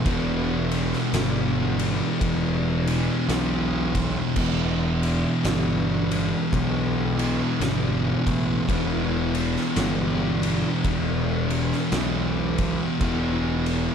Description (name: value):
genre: stoner and doom metal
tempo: 56 BPM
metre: 4/4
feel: swing 61% on 8ths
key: E minor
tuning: A4 = 440 Hz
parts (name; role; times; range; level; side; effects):
- thick fuzz guitar; riff; 0.0-13.9 s; E2 to E3; -26 LUFS; left 7 dB; distortion
- thick fuzz guitar; riff; 0.0-13.9 s; E2 to E3; -27 LUFS; right 11 dB; distortion
- fuzz picked electric bass; bass; 0.1-13.9 s; E1 to B1; -28 LUFS; equal; overdrive
- oversized low-tuned drum kit; drums; 0.1-13.9 s; crash cymbal, kick drum, ride cymbal, snare drum; -29 LUFS; equal; none
room: little or no reverb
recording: dark, warm production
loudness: -21 LUFS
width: side -7 dB against mid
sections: 0.0-13.9 A section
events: none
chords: 0.0 Em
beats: | 0.06 1.13 2.21 3.29 | 4.37 5.44 6.52 7.60 | 8.68 9.76 10.84 11.92 | 13.00